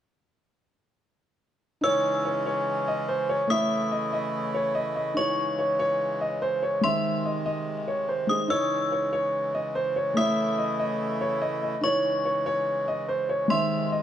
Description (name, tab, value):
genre	hip hop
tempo	144 BPM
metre	4/4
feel	half-time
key	C# harmonic minor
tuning	A4 = 440 Hz
part	dark grand piano	melody	1.8-14.0 s	B#4 to E5	-26 LUFS	equal	ping-pong delay
part	metallic FM bell	second line	1.8-13.9 s	B#5 to E6	-31 LUFS	left 2 dB	chorus, ping-pong delay
part	felt-muted upright piano	accompaniment	1.8-14.0 s	D#3 to C#5	-30 LUFS	equal	none
part	accordion	sustained chords	1.8-14.0 s	B#2 to E4	-33 LUFS	equal	none
room	moderate studio reverb, RT60 0.6 s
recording	none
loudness	-24 LUFS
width	side -10 dB against mid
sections	1.8-14.0 A section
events	none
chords	1.8 C#madd9; 3.5 A; 5.2 C#madd9; 6.8 G#; 8.5 C#madd9; 10.2 A; 11.8 C#madd9; 13.5 G#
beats	| 1.84 2.25 2.67 3.09 | 3.50 3.92 4.34 4.75 | 5.17 5.59 6.00 6.42 | 6.84 7.25 7.67 8.09 | 8.50 8.92 9.34 9.75 | 10.17 10.59 11.00 11.42 | 11.84 12.25 12.67 13.09 | 13.50 13.92